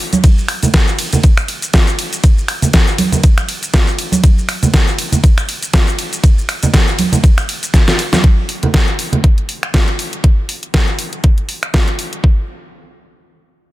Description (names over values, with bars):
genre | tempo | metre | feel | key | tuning
nu-disco | 120 BPM | 4/4 | swing 56% on 16ths | none | none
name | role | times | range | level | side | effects
pop drum kit | drums | 0.1-12.2 s | finger snaps, hi-hat, ride cymbal, shaker, snare drum | -17 LUFS | left 1 dB | overdrive
congas | percussion | 0.1-9.2 s | none | -15 LUFS | right 3 dB | none
electronic kick drum | drums | 0.2-12.3 s | none | -11 LUFS | equal | overdrive
room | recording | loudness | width
little or no reverb | dense, heavily limited modern master | -11 LUFS | side -16 dB against mid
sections
0.0-8.2 A section; 8.2-12.2 B section; 12.2-13.7 C section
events
drop 0.0-8.2; drum fill 7.7-8.2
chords
none